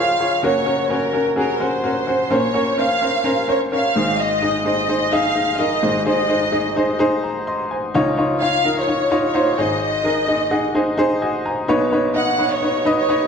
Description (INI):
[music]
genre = pop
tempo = 128 BPM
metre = 4/4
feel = straight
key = unclear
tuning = A4 = 440 Hz
[part]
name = warm studio violin section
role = melody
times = 0.0-13.3 s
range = Bb4 to Gb5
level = -20 LUFS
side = right 1 dB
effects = none
[part]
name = clear upright piano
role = accompaniment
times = 0.0-13.3 s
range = Gb1 to C6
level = -18 LUFS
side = left 1 dB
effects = none
[sound]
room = wet large studio reverb, RT60 1.2 s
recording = worn, warbling old tape, cassette tape, warbly pitch drift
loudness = -16 LUFS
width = side -6 dB against mid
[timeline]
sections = 0.0-7.9 A section; 7.9-13.3 B section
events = upright piano fill 10.3-11.7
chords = 0.4 Gb; 2.3 Bbmadd9; 4.0 Ab; 7.9 Dbadd9; 9.6 Ab; 11.7 Cbadd9